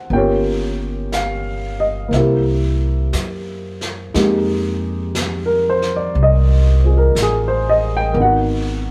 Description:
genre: jazz ballad.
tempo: 60 BPM.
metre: 4/4.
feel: swing 67% on 8ths.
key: F minor.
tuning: A4 = 441 Hz.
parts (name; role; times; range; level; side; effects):
dark baby grand piano; accompaniment; 0.0-8.9 s; Ab3 to G5; -20 LUFS; equal; none.
upright bass; bass; 0.1-8.9 s; G1 to Gb2; -21 LUFS; equal; none.
jazz brush drum kit; drums; 0.1-8.9 s; brushed snare drum, hi-hat, snare drum; -31 LUFS; equal; none.
room: moderate studio reverb, RT60 0.6 s.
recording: band playing live in one room.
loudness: -17 LUFS.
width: mono.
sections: 0.0-4.1 A section; 4.1-8.9 B section.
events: none.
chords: 0.1 Gm7b5; 2.1 C7; 4.1 Fm11; 8.2 Abm7.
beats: | 0.11 1.11 2.12 3.13 | 4.14 5.15 6.15 7.15 | 8.15.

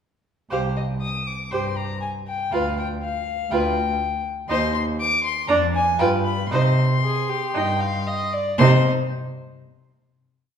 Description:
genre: quick classical-period movement for string quartet.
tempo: 119 BPM.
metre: 4/4.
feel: straight.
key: C minor.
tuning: A4 = 440 Hz.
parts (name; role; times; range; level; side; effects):
rich violin; melody; 0.5-8.9 s; Eb5 to Eb6; -25 LUFS; left 4 dB; none.
warm violin; second line; 0.5-8.9 s; G4 to G5; -26 LUFS; left 1 dB; none.
rich viola; accompaniment; 0.5-8.9 s; D4 to G4; -26 LUFS; right 3 dB; none.
rich cello; bass; 0.5-8.9 s; C2 to C3; -23 LUFS; right 1 dB; none.
room: wet recital hall reverb, RT60 1.4 s.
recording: heard from further back in the room.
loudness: -20 LUFS.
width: side -8 dB against mid.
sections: 0.5-8.6 A section; 8.6-10.6 final chord.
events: none.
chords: 0.5 C5; 2.5 G7/D; 4.5 Cm/Eb; 5.5 Ddim/F; 6.0 G7; 6.5 Cm.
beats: | 0.52 1.02 1.52 2.02 | 2.52 3.02 3.52 4.01 | 4.50 5.00 5.49 6.00 | 6.52 7.04 7.56 8.08 | 8.60.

